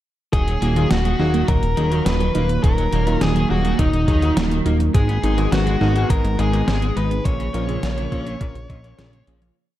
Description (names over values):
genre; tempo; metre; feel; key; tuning
synthwave; 104 BPM; 4/4; straight; Eb minor; A4 = 439 Hz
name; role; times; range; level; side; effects
bluesy overdriven lead guitar; melody; 0.3-9.2 s; Eb4 to Db5; -25 LUFS; left 1 dB; distortion, ping-pong delay
lush unison pad; sustained chords; 0.3-9.5 s; Bb2 to Cb4; -27 LUFS; right 1 dB; chorus, sidechain pumping
wide unison pluck; arpeggios; 0.3-9.5 s; Db3 to F4; -28 LUFS; right 4 dB; cassette tape, ping-pong delay
crunchy overdriven guitar; riff; 0.3-9.4 s; Bb2 to Eb4; -34 LUFS; left 2 dB; lush chorus, ping-pong delay
clear electric grand piano; stabs; 0.3-9.5 s; Ab2 to Eb5; -30 LUFS; left 4 dB; none
fat analog bass; bass; 0.3-9.5 s; Eb1 to Bb1; -20 LUFS; equal; none
clean 12-bit digital drum machine; drums; 0.3-9.5 s; hi-hat, snare drum; -26 LUFS; equal; gated reverb
electronic kick drum; drums; 0.3-8.8 s; none; -20 LUFS; equal; none
room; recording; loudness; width
light reverb, digital ambience; none; -17 LUFS; side -13 dB against mid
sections
0.3-9.6 verse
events
fade-out 6.5-9.6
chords
0.3 Ebm; 4.9 Abm; 7.3 Bbm